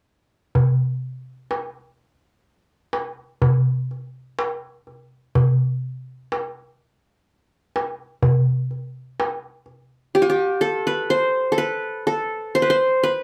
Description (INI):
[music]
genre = Arabic maqam ensemble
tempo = 125 BPM (eighths)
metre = 10/8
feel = straight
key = unclear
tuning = A4 = 438 Hz
[part]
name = darbuka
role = percussion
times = 0.6-9.8 s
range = none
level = -22 LUFS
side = equal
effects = none
[part]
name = qanun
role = melody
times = 10.1-13.2 s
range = F#4-50c to C5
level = -21 LUFS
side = equal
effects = none
[sound]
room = wet small room reverb, RT60 0.5 s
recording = heard from further back in the room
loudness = -22 LUFS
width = mono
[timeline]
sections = 0.5-10.1 A section; 10.1-13.2 B section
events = none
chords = none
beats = | 0.55 1.03 1.51 1.99 2.46 2.94 3.42 3.90 4.38 4.86 | 5.34 5.82 6.30 6.78 7.26 7.74 8.22 8.70 9.18 9.66 | 10.14 10.62 11.10 11.58 12.06 12.54 13.02